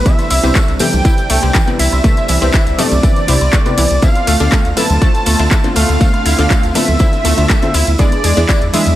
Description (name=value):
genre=progressive house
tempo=121 BPM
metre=4/4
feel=straight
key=unclear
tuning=A4 = 440 Hz
part: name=wide unison lead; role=melody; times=0.0-9.0 s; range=D5 to A5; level=-20 LUFS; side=right 1 dB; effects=dub echo
part: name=soft supersaw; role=second line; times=0.0-9.0 s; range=D5 to A5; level=-25 LUFS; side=equal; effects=sidechain pumping, tape echo
part: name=warm chamber string section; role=sustained chords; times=0.0-9.0 s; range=C3 to F4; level=-24 LUFS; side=right 1 dB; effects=sidechain pumping
part: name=wide unison pluck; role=arpeggios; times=0.1-8.8 s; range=E3 to E5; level=-21 LUFS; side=right 1 dB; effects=sidechain pumping, tape echo
part: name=wide unison pluck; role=stabs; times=0.1-9.0 s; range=C3 to E5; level=-20 LUFS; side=left 2 dB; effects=sidechain pumping
part: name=deep house drum kit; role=drums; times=0.1-9.0 s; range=handclaps, hi-hat, ride cymbal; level=-20 LUFS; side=equal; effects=overdrive
part: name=electronic kick drum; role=drums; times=0.1-8.6 s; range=none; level=-12 LUFS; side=equal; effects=none
part: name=congas and woodblock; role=percussion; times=0.1-9.0 s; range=none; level=-25 LUFS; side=left 2 dB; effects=sidechain pumping on perc
part: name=tambourine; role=percussion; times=0.1-9.0 s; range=none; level=-27 LUFS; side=left 2 dB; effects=none
part: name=round analog bass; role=bass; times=0.3-8.9 s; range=C2 to E2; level=-14 LUFS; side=equal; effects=sidechain pumping
room=little or no reverb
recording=none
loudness=-10 LUFS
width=side -14 dB against mid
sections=0.0-9.0 A section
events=none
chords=0.1 Cmaj7; 4.0 Dm7; 8.0 E7